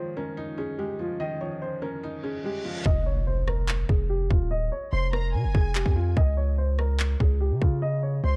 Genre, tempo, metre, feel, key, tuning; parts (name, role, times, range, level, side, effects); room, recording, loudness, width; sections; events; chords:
hip hop, drill; 145 BPM; 4/4; half-time; F minor; A4 = 440 Hz
dark baby grand piano; melody; 0.0-8.4 s; F4 to Eb5; -35 LUFS; equal; low-pass filter, delay
felt-muted upright piano; accompaniment; 0.0-2.9 s; Eb3 to Eb4; -37 LUFS; equal; low-pass filter
deep dark ambient pad; sustained chords; 0.0-2.8 s; Eb3 to F4; -46 LUFS; equal; chorus, built-in reverb
reverse cymbal and impact; sound effects; 2.3-4.5 s; -40 LUFS; equal
distorted 808-style bass; bass; 2.9-8.4 s; Eb1 to Db3; -27 LUFS; equal; distortion
drill drum kit; drums; 2.9-7.7 s; handclaps, kick drum, rim click; -26 LUFS; equal
rich symphonic violin section; second line; 4.9-8.4 s; Ab5 to C6; -38 LUFS; equal; delay
studio reverb; dark, warm production; -26 LUFS; mono
0.0-2.9 A section; 2.9-8.4 B section
reverse cymbal 2.3-2.9; hi-hats muted 2.9-8.4; impact 2.9-4.5; filter sweep 2.9-8.4
0.0 Dbadd9; 2.9 Fm; 6.2 N.C.